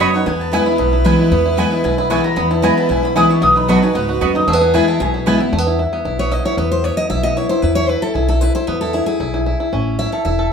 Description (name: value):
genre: bluegrass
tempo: 228 BPM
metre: 4/4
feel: straight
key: E major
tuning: A4 = 442 Hz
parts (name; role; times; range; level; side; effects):
- mandolin; melody; 0.0-5.1 s; D#5 to D#6; -20 LUFS; equal; none
- clear fiddle; second line; 0.0-5.4 s; G#4 to C#5; -22 LUFS; right 2 dB; none
- picked steel-string acoustic guitar; accompaniment; 0.0-10.5 s; E2 to E5; -19 LUFS; left 1 dB; none
- bluegrass banjo; arpeggios; 0.0-10.5 s; A3 to A4; -19 LUFS; equal; none
- mandolin; stabs; 0.0-5.4 s; B3 to B5; -20 LUFS; right 3 dB; none
- upright bass; bass; 0.0-10.5 s; E1 to E2; -21 LUFS; equal; none
room: wet studio reverb, RT60 0.6 s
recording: heard from further back in the room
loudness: -13 LUFS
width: side -6 dB against mid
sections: 0.0-5.5 A section; 5.5-10.5 A section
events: mandolin solo 0.0-5.5; steel-string acoustic guitar solo 5.5-10.5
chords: 0.3 E; 3.4 B; 4.5 E; 9.7 A